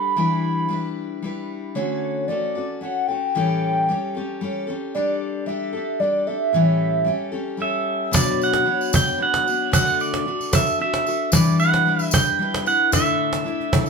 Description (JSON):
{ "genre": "acoustic folk duo or small band", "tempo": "113 BPM", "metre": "3/4", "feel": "straight", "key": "A mixolydian", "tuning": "A4 = 440 Hz", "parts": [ { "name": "hollow clarinet-like synth lead", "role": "melody", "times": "0.0-7.6 s", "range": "C#5 to B5", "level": "-23 LUFS", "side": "right 2 dB", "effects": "chorus, phaser" }, { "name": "picked steel-string acoustic guitar", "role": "accompaniment", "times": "0.0-13.9 s", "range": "A2 to C#5", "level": "-24 LUFS", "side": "left 4 dB", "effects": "none" }, { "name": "pedal steel guitar", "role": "second line", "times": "7.6-13.9 s", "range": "D5 to G5", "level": "-21 LUFS", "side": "right 5 dB", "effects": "none" }, { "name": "cajon", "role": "percussion", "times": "8.1-13.8 s", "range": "none", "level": "-21 LUFS", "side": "right 1 dB", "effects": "none" }, { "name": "tambourine", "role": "percussion", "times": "8.1-13.9 s", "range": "none", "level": "-28 LUFS", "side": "left 3 dB", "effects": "none" } ], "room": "wet studio reverb, RT60 0.5 s", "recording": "band playing live in one room", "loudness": "-19 LUFS", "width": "side -5 dB against mid", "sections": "0.0-8.1 A section; 8.1-13.9 B section", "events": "pedal steel guitar solo 8.1-13.9", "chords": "0.2 Em7; 1.8 Dmaj7; 3.4 A7; 5.0 Gsus2; 6.5 A7; 8.1 Bmadd9; 9.7 D; 11.3 Em7; 12.9 Asus4" }